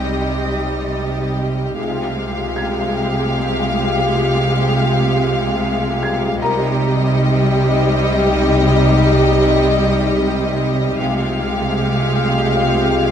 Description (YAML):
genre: cinematic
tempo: 78 BPM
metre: 3/4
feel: straight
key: C minor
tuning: A4 = 440 Hz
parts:
  - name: rich studio violin section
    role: melody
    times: 0.0-13.1 s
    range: Eb5 to F5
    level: -23 LUFS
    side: left 4 dB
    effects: none
  - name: dark studio violin section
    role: second line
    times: 0.0-13.1 s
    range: G4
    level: -24 LUFS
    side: equal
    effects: none
  - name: rich studio viola section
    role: accompaniment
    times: 0.0-13.1 s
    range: G3 to Ab3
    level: -22 LUFS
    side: right 1 dB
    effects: none
  - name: glass harmonica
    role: sustained chords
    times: 0.0-13.1 s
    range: Eb4 to G5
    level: -26 LUFS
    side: left 1 dB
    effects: none
  - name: rich studio cello section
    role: bass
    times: 0.0-13.1 s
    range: C3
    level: -22 LUFS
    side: right 2 dB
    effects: none
  - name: warm studio double bass section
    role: bass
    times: 0.0-13.1 s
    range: C2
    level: -21 LUFS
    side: right 1 dB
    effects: none
  - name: dark studio violin section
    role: texture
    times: 0.0-1.4, 11.0-13.1 s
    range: Eb6 to Bb6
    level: -32 LUFS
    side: left 1 dB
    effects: none
  - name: felt-muted upright piano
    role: texture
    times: 0.0-13.1 s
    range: Bb4 to Ab6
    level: -26 LUFS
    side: left 3 dB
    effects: none
  - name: mellow French horn section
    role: sustained chords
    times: 1.8-13.1 s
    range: G3 to G4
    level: -22 LUFS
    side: left 4 dB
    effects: none
room: moderate concert hall reverb, RT60 2.1 s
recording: none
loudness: -14 LUFS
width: side -8 dB against mid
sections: 0.0-13.1 A section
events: none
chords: 0.0 Cm; 1.8 Fmadd9/C; 6.4 Cm; 11.0 Fmadd9/C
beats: 0.22 1.00 | 1.78 2.55 3.33 | 4.09 4.87 5.64 | 6.41 7.17 7.94 | 8.70 9.47 10.23 | 11.00 11.77 12.55